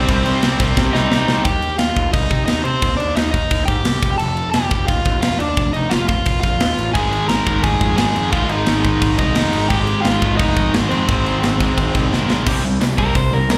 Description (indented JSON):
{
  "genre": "punk rock",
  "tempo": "174 BPM",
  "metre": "4/4",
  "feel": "straight",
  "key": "unclear",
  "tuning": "A4 = 440 Hz",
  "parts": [
    { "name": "overdriven electric guitar", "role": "melody", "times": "0.0-13.6 s", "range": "C4 to Bb5", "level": "-23 LUFS", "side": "equal", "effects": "slapback echo" },
    { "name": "sludgy distorted guitar", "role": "riff", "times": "0.0-1.4, 6.9-13.6 s", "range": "Ab2 to C4", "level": "-26 LUFS", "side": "equal", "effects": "overdrive, slapback echo" },
    { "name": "tight distorted guitar", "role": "riff", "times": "0.0-1.4, 6.9-13.6 s", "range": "Ab2 to C4", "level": "-25 LUFS", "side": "equal", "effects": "distortion, slapback echo" },
    { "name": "fuzz picked electric bass", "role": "bass", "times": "0.0-13.6 s", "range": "F1 to C3", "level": "-24 LUFS", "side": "equal", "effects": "overdrive" },
    { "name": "tight metal drum kit", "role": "drums", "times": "0.1-13.6 s", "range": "crash cymbal, hi-hat, kick drum, snare drum", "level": "-22 LUFS", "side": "equal", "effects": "none" }
  ],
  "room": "little or no reverb",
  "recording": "live gig heard through the venue's PA, club reverb",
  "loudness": "-17 LUFS",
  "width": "mono",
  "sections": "0.0-1.5 A section; 1.5-12.5 B section; 12.5-13.6 C section",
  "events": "drum fill 0.8-1.5, 12.1-12.5; overdriven electric guitar solo 12.5-13.6",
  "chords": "0.0 Cm; 1.5 Eb; 4.0 F; 7.0 Ab; 12.5 C5"
}